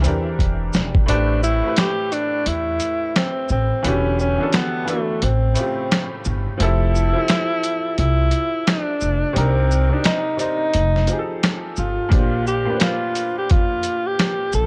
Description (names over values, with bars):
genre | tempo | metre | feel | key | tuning
lo-fi hip hop | 87 BPM | 4/4 | swing 62% on 16ths | A minor | A4 = 441 Hz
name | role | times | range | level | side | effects
breathy tenor saxophone | melody | 0.0-14.7 s | A3 to A4 | -24 LUFS | equal | low-pass filter
bright upright piano | accompaniment | 0.0-14.7 s | A2 to D5 | -28 LUFS | equal | cassette tape, low-pass filter
upright bass | bass | 0.0-14.7 s | E1 to F2 | -22 LUFS | equal | transformer saturation
lo-fi sampler-style drum kit | drums | 0.0-14.7 s | finger snaps, hi-hat, kick drum, shaker, snare drum | -22 LUFS | equal | overdrive
room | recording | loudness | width
light reverb, small room ambience | dry, gritty hardware recording, cassette tape | -20 LUFS | mono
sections
0.0-1.1 A section; 1.1-14.7 A section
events
drum fill 0.4-1.1; kick muted 1.1-12.1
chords
0.0 E7alt; 1.1 Am9; 3.8 Em9; 5.2 A7alt; 6.6 Fmaj7; 9.4 Cm7; 10.7 F9; 12.1 Bb69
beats
0.39 | 1.08 1.77 2.46 3.15 | 3.84 4.53 5.22 5.91 | 6.60 7.29 7.98 8.66 | 9.36 10.04 10.73 11.42 | 12.11 12.80 13.49 14.18